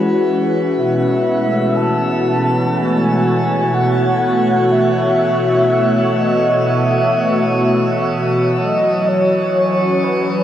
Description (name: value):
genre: ambient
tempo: 62 BPM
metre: 4/4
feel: straight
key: unclear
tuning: A4 = 441 Hz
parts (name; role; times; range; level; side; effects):
- warm analog pad; sustained chords; 0.0-10.4 s; B2 to C#5; -17 LUFS; equal; chorus
- vibraphone with medium mallets; arpeggios; 0.0-8.6 s; E4 to B4; -22 LUFS; left 1 dB; tape echo
- glass harmonica; texture; 0.0-10.4 s; F#4 to F#5; -22 LUFS; left 2 dB; none
- warm velvety synth lead; melody; 0.8-10.4 s; B4 to A5; -18 LUFS; equal; chorus, tape echo
- overtone-sweeping drone; drone; 1.8-10.4 s; E3 to F#4; -25 LUFS; right 3 dB; chorus, built-in reverb
room: wet shimmer reverb, RT60 7.5 s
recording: worn, warbling old tape, cassette tape, warbly pitch drift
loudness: -13 LUFS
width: side -11 dB against mid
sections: 0.0-10.4 A section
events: none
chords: 0.0 E69; 0.8 B9sus4; 8.6 F#7(no3)